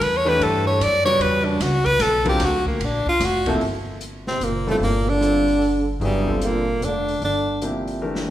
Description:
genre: modal jazz.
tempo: 150 BPM.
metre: 3/4.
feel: swing 64% on 8ths.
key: E dorian, G dorian from 3.6 s.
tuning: A4 = 436 Hz.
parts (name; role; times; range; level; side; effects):
clear tenor saxophone; melody; 0.0-7.6 s; G3 to D5; -21 LUFS; left 1 dB; none.
upright bass; bass; 0.0-8.3 s; F1 to G2; -26 LUFS; equal; none.
open jazz drum kit; drums; 0.0-8.3 s; hi-hat, kick drum, ride cymbal, snare drum; -31 LUFS; equal; none.
clear concert grand piano; accompaniment; 0.2-8.3 s; C3 to D5; -25 LUFS; equal; none.
mellow trombone; second line; 4.3-7.6 s; G2 to D3; -25 LUFS; right 4 dB; none.
room: wet recital hall reverb, RT60 1.5 s.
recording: recorded in a church or concert hall.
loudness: -18 LUFS.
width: side -12 dB against mid.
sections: 0.0-3.6 A section; 3.6-8.3 B section.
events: tenor saxophone solo 0.0-3.6; drum fill 8.0.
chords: 0.0 Em11; 2.4 Dm; 3.6 Gm9.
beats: | 0.01 0.41 0.81 | 1.21 1.61 2.01 | 2.41 2.81 3.21 | 3.61 4.01 4.41 | 4.81 5.21 5.61 | 6.01 6.42 6.82 | 7.22 7.62 8.02.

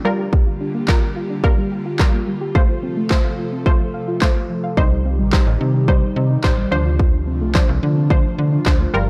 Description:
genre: dance-pop.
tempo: 108 BPM.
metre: 4/4.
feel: straight.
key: unclear.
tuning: A4 = 440 Hz.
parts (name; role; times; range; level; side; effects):
unison pluck; accompaniment; 0.0-9.1 s; F3 to C5; -26 LUFS; equal; sidechain pumping.
airy breathy pad; sustained chords; 0.0-9.1 s; C3 to A4; -29 LUFS; equal; chorus, sidechain pumping.
soft round pluck; arpeggios; 0.1-9.0 s; Eb3 to F5; -30 LUFS; equal; chorus, sidechain pumping, delay.
pop drum kit; drums; 0.3-8.8 s; handclaps, kick drum, snare drum; -19 LUFS; equal; none.
slap-like FM bass; bass; 4.8-9.1 s; G1 to D3; -21 LUFS; equal; sidechain pumping.
room: little or no reverb.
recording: dark, warm production.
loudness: -18 LUFS.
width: mono.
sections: 0.0-9.1 A section.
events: none.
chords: 0.1 Gm7; 2.6 F; 4.8 Cm; 6.7 Dm7.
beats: | 0.33 0.88 1.44 2.00 | 2.55 3.11 3.66 4.22 | 4.77 5.33 5.88 6.44 | 7.00 7.55 8.11 8.66.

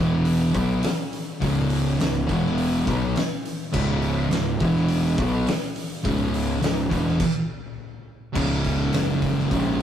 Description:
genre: stoner and doom metal.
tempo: 104 BPM.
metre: 4/4.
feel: straight.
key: C# minor.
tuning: A4 = 440 Hz.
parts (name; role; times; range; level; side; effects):
thick fuzz guitar; riff; 0.0-9.8 s; C#2 to B3; -26 LUFS; left 3 dB; distortion.
thick fuzz guitar; riff; 0.0-9.8 s; C#2 to B3; -25 LUFS; right 3 dB; distortion.
fuzz picked electric bass; bass; 0.0-9.8 s; C#1 to B1; -26 LUFS; equal; overdrive.
oversized low-tuned drum kit; drums; 0.3-9.6 s; crash cymbal, hi-hat, kick drum, snare drum; -27 LUFS; left 1 dB; none.
room: moderate studio reverb, RT60 0.5 s.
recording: rough rehearsal-room recording, tube saturation.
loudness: -21 LUFS.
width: side -10 dB against mid.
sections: 0.0-8.3 A section; 8.3-9.8 B section.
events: stop 7.2-8.3.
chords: 0.0 E5; 0.5 C#5; 2.3 E5; 2.9 C#5; 4.6 E5; 5.2 C#5; 6.9 E5; 7.5 N.C.; 8.3 C#5.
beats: 0.25 0.83 | 1.41 1.99 2.57 3.15 | 3.73 4.31 4.88 5.46 | 6.04 6.62 7.19 7.77 | 8.35 8.93 9.51.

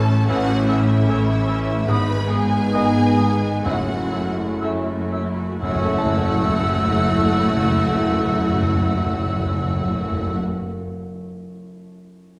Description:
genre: cinematic, emotional film score for orchestra.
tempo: 59-78 BPM.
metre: 4/4.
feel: rubato.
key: F# minor.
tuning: A4 = 435 Hz.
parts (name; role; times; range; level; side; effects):
clear studio violin section; melody; 0.0-10.4 s; E5 to B5; -32 LUFS; equal; none.
clear symphonic violin section; second line; 0.0-10.4 s; E4 to B4; -34 LUFS; equal; none.
mellow clarinet; second line; 0.0-10.4 s; A3 to C#4; -33 LUFS; equal; none.
bright concert grand piano; accompaniment; 0.0-12.4 s; F#1 to A5; -29 LUFS; equal; none.
clear symphonic viola section; accompaniment; 0.0-10.4 s; E3 to G#4; -32 LUFS; equal; none.
mellow French horn section; sustained chords; 0.0-10.4 s; A3 to E4; -27 LUFS; equal; none.
rich symphonic cello section; bass; 0.0-10.4 s; F#2 to A2; -28 LUFS; equal; none.
rich symphonic double bass section; bass; 0.0-10.4 s; F#1 to A1; -29 LUFS; equal; none.
silver concert flute; second line; 0.3-10.4 s; D#6 to E6; -30 LUFS; equal; none.
timpani; percussion; 3.7-10.4 s; F#2; -27 LUFS; equal; none.
room: wet scoring stage reverb, RT60 1.9 s.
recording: heard from further back in the room.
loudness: -20 LUFS.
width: mono.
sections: 0.0-5.6 A section; 5.6-9.6 B section.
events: slowing down 0.0-5.6.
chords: 0.0 A; 1.9 G#m; 3.7 F#m7.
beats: 0.29 1.07 | 1.88 2.74 3.66 4.63 | 5.63 6.64 7.64 8.63.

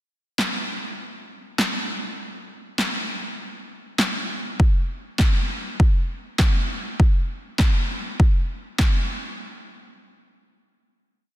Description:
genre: pop.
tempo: 100 BPM.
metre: 4/4.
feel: straight.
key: none.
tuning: none.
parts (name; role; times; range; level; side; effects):
deep house drum kit; drums; 0.4-8.9 s; handclaps, kick drum, snare drum; -20 LUFS; equal; overdrive.
room: light reverb.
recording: dense, heavily limited modern master.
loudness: -21 LUFS.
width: side -14 dB against mid.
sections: 0.0-9.4 verse; 9.4-11.4 final hit.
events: none.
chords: none.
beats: 0.40 1.00 1.60 | 2.20 2.80 3.40 4.00 | 4.60 5.20 5.80 6.40 | 7.00 7.60 8.20 8.80.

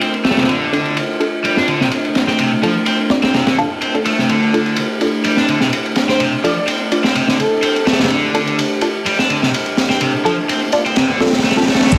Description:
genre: breakbeat, breaks.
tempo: 126 BPM.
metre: 4/4.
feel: swing 53% on 16ths.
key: D minor.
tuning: A4 = 441 Hz.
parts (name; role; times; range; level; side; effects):
warbly tape-like pad; sustained chords; 0.0-12.0 s; A3 to G4; -24 LUFS; equal; chorus, built-in reverb, vintage 12-bit sampler grit, sidechain pumping.
cranked stack guitar; riff; 0.0-12.0 s; C3 to D4; -22 LUFS; equal; overdrive, tube saturation, vintage 12-bit sampler grit, low-pass filter, tape echo.
crunchy breakbeat drum kit; drums; 0.0-12.0 s; kick drum, ride cymbal, snare drum; -19 LUFS; equal; low-pass filter on kick, low-pass filter on cymbals, low-pass filter on snare, low-pass filter on room.
filtered dub chord stab; stabs; 0.7-11.6 s; D4 to D5; -23 LUFS; equal; phaser, tape echo.
breathy flute-like synth lead; melody; 6.1-7.9 s; A4 to D5; -23 LUFS; equal; chorus, telephone sound, tape echo.
riser and downlifter; sound effects; 9.7-12.0 s; none; -29 LUFS; equal; none.
upright bass; bass; 11.9-12.0 s; D2; -15 LUFS; equal; none.
electronic hi-hat; drums; 11.9-12.0 s; none; -29 LUFS; equal; low-pass filter on hats, low-pass filter on snare.
room: light reverb, small room reverb.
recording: vinyl crackle.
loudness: -16 LUFS.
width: mono.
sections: 0.0-11.9 A section.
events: filter sweep on synth stab 0.0-11.9.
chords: 0.0 Dm.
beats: 0.01 | 0.49 0.96 1.44 1.92 | 2.39 2.87 3.35 3.82 | 4.30 4.77 5.25 5.73 | 6.20 6.68 7.16 7.63 | 8.11 8.58 9.06 9.54 | 10.01 10.49 10.96 11.44 | 11.92.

